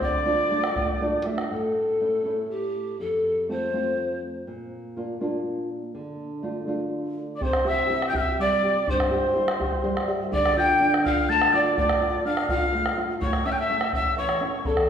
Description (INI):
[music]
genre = andean folk, Andean ensemble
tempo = 82 BPM (dotted quarters)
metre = 6/8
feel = straight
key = D minor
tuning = A4 = 441 Hz
[part]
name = mellow pan flute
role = melody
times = 0.0-4.2, 7.4-14.9 s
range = G4 to A5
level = -24 LUFS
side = equal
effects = none
[part]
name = breathy quena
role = second line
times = 0.0-1.2, 7.4-14.9 s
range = A5 to A6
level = -28 LUFS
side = left 5 dB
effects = none
[part]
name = nylon-string guitar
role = accompaniment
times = 0.0-14.9 s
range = E2 to E5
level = -28 LUFS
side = right 1 dB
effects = none
[part]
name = bombo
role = percussion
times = 0.0-1.5, 7.4-14.9 s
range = none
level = -29 LUFS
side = equal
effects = none
[sound]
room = wet recital hall reverb, RT60 1.6 s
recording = recorded in a church or concert hall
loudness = -22 LUFS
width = side -8 dB against mid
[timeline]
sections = 0.0-1.5 A section; 1.5-7.4 B section; 7.4-14.9 C section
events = speeding up 0.0-14.9; nylon-string guitar fill 0.8-1.5, 9.6-10.3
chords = 0.0 Dm; 1.5 A; 3.0 F; 4.5 Bb; 6.0 Dm; 7.4 C; 10.3 Dm; 13.2 A